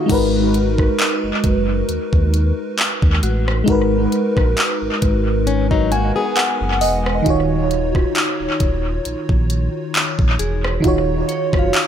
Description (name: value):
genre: contemporary R&B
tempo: 67 BPM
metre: 4/4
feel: swing 54% on 16ths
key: G# minor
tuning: A4 = 440 Hz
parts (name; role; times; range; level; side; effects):
- FM electric piano with soft pad layer; accompaniment; 0.0-11.9 s; D#3 to G#5; -19 LUFS; equal; chorus, tape echo
- fingerpicked plugged-in steel-string acoustic guitar; arpeggios; 0.0-0.1, 5.5-7.2 s; F#3 to G#4; -23 LUFS; left 5 dB; tape echo
- sub bass with octave; bass; 0.1-11.7 s; D#1 to D#2; -20 LUFS; equal; none
- smooth R&B drum kit; drums; 0.1-11.9 s; crash cymbal, handclaps, hi-hat, kick drum, rim click; -19 LUFS; equal; tape echo
- glassy synth bell; texture; 1.0-4.1, 10.4-11.9 s; F#4 to E#5; -30 LUFS; left 1 dB; chorus, tape echo
room: light reverb, digital ambience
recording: echo-heavy mix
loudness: -15 LUFS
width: side -9 dB against mid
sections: 0.1-11.9 A section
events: FM electric piano fill 5.5-7.3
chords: 0.1 G#m7; 7.3 D#m7